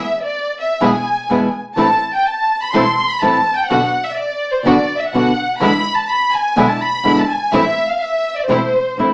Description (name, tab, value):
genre	tango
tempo	125 BPM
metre	4/4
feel	rubato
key	A minor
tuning	A4 = 440 Hz
part	warm studio violin section	second line	0.0-9.1 s	C5 to C6	-16 LUFS	equal	none
part	rich symphonic string section	stabs	0.0-9.1 s	G#3 to A4	-22 LUFS	equal	none
part	rich double bass	bass	0.0-9.1 s	E1 to E2	-27 LUFS	equal	none
part	nylon-string guitar	accompaniment	0.8-9.1 s	B2 to F#4	-15 LUFS	equal	none
room	wet club reverb, RT60 0.6 s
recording	heard from further back in the room, small speaker sound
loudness	-13 LUFS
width	side -30 dB against mid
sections	0.0-9.1 A section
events	violin section solo 0.0-9.1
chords	0.0 E; 1.8 Am; 3.7 Bm; 5.6 E7; 7.5 Am